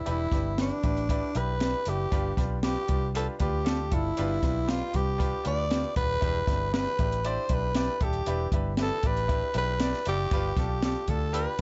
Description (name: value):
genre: uptempo 1960s-style soul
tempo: 117 BPM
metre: 4/4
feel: straight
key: unclear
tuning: A4 = 439 Hz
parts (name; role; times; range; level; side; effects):
- growling tenor saxophone; melody; 0.0-11.6 s; D4 to D5; -32 LUFS; equal; none
- clear grand piano; accompaniment; 0.1-11.6 s; G2 to D5; -38 LUFS; equal; none
- vintage muted fingered electric bass; bass; 0.1-11.6 s; Eb1 to D2; -33 LUFS; equal; none
- compact cocktail drum kit; drums; 0.1-11.6 s; hi-hat, kick drum, snare drum; -32 LUFS; equal; none
room: light reverb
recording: nothing above 7.8 kHz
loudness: -28 LUFS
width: mono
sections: 0.0-11.6 A section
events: none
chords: 0.0 Em7; 2.1 G7; 6.2 Em7; 10.3 G7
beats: | 0.06 0.58 1.09 1.61 | 2.12 2.63 3.15 3.66 | 4.17 4.69 5.20 5.71 | 6.22 6.74 7.25 7.76 | 8.27 8.78 9.29 9.80 | 10.31 10.83 11.34